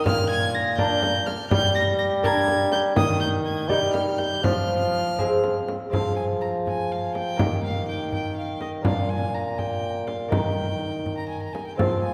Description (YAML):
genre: classical, renaissance-style consort dance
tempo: 82 BPM (dotted quarters)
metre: 6/8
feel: straight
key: unclear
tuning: A4 = 441 Hz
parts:
  - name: rich violin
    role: melody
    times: 0.0-12.1 s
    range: Eb5 to Bb6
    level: -32 LUFS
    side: equal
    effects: none
  - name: lute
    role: accompaniment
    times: 0.0-12.1 s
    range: Bb2 to Bb4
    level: -31 LUFS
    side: equal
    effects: none
  - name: warm bassoon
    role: bass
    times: 0.0-12.1 s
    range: Bb2 to G3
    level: -28 LUFS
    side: equal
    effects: none
  - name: frame drum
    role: percussion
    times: 0.1-12.0 s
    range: none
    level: -30 LUFS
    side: equal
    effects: none
room: wet church reverb, RT60 2.7 s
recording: recorded in a church or concert hall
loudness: -24 LUFS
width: mono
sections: 0.0-5.9 A section; 5.9-12.1 B section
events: none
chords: 0.1 Bb; 1.5 Gm; 3.0 Eb; 4.4 Fm; 7.4 Eb; 8.9 Bb; 10.3 Eb